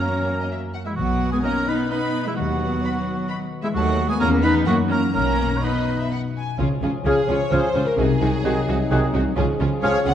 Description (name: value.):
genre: cinematic, playful, whimsical film cue.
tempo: 129 BPM.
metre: 3/4.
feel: straight.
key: B major, Db major from 6.6 s.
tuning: A4 = 441 Hz.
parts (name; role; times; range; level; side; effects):
marimba with soft mallets; melody; 0.0-10.1 s; G#3 to Gb5; -25 LUFS; left 4 dB; none.
warm studio violin section; melody; 0.0-10.1 s; Ab4 to B5; -34 LUFS; left 4 dB; none.
rich studio violin section; second line; 0.0-10.1 s; Ab4 to B5; -31 LUFS; equal; none.
warm oboe; second line; 0.0-10.0 s; E4 to Ab5; -28 LUFS; right 2 dB; none.
rich studio viola section; accompaniment; 0.0-10.1 s; G#3 to Gb4; -28 LUFS; right 1 dB; none.
concert harp; arpeggios; 0.0-10.1 s; F#2 to Ab5; -28 LUFS; left 6 dB; none.
rich studio cello section; bass; 0.0-10.1 s; C3 to B3; -27 LUFS; right 3 dB; none.
rich studio double bass section; bass; 0.0-10.1 s; B1 to F#2; -26 LUFS; right 3 dB; none.
warm French horn section; sustained chords; 6.6-10.1 s; F3 to Ab4; -28 LUFS; left 1 dB; none.
clear clarinet; second line; 7.1-10.0 s; Ab4; -31 LUFS; left 1 dB; none.
small flute group; second line; 7.1-9.9 s; F6 to Gb6; -31 LUFS; equal; none.
clear bassoon; accompaniment; 7.1-10.0 s; Db3 to F3; -30 LUFS; right 3 dB; none.
room: moderate scoring stage reverb, RT60 1.6 s.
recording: dark, warm production.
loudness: -19 LUFS.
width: side -10 dB against mid.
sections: 0.0-6.6 A section; 6.6-10.1 B section.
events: none.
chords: 0.0 F#; 1.0 B; 2.4 B/D#; 3.7 B7/D#; 4.2 E; 4.7 F#7; 5.1 B; 6.6 Db; 8.0 Ab7/C; 9.4 Db.